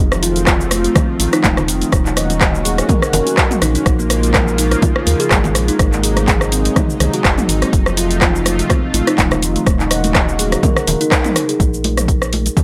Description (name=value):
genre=afro house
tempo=124 BPM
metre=4/4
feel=swing 55% on 16ths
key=unclear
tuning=A4 = 439 Hz
part: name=warm analog pad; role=sustained chords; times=0.0-11.6 s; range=C3 to Gb4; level=-26 LUFS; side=equal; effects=chorus, sidechain pumping
part: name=round analog bass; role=bass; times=0.0-12.5 s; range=Eb1 to Eb2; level=-22 LUFS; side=equal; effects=tube saturation, sidechain pumping
part: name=kalimba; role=arpeggios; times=0.1-11.6 s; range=Eb3 to Eb5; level=-22 LUFS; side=equal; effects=sidechain pumping, analog delay
part: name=deep house drum kit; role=drums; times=0.1-12.6 s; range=handclaps, hi-hat, rim click, shaker, toms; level=-20 LUFS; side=equal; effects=none
part: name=electronic kick drum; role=drums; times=0.5-12.6 s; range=none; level=-19 LUFS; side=equal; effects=none
part: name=congas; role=percussion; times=0.5-12.6 s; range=none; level=-26 LUFS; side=equal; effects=none
room=little or no reverb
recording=dry, gritty hardware recording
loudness=-15 LUFS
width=mono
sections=0.0-11.6 A section; 11.6-12.6 B section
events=drop 0.0-11.6; band accent 11.1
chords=0.0 F7; 1.9 Ebm7; 3.9 Bbm7; 5.8 Ab9; 7.7 F7; 9.7 Ebm7; 11.6 N.C.